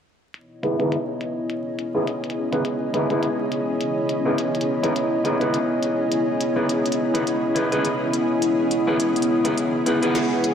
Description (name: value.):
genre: glitch hop.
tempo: 104 BPM.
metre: 4/4.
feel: swing 57% on 16ths.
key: C# minor.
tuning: A4 = 440 Hz.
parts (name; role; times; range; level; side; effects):
dark analog pad; sustained chords; 0.3-10.5 s; B3 to F#5; -23 LUFS; left 1 dB; chorus.
glitchy drum kit; drums; 0.3-10.5 s; hi-hat, snare drum; -31 LUFS; left 1 dB; low-pass filter on hats, low-pass filter on snare.
granular cloud pad; texture; 1.6-10.5 s; C#4 to G#4; -27 LUFS; right 1 dB; built-in reverb, lush chorus.
electric guitar at the edge of break-up; stabs; 0.6-10.2 s; D#4 to B4; -25 LUFS; equal; low-pass filter, ping-pong delay.
room: wet lush hall reverb, RT60 1.7 s.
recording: dreamy mix soaked in reverb, vinyl crackle.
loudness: -20 LUFS.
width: side -8 dB against mid.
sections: 0.3-10.5 A section.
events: filter sweep on clean electric guitar 0.3-10.5.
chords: 0.3 C#m9.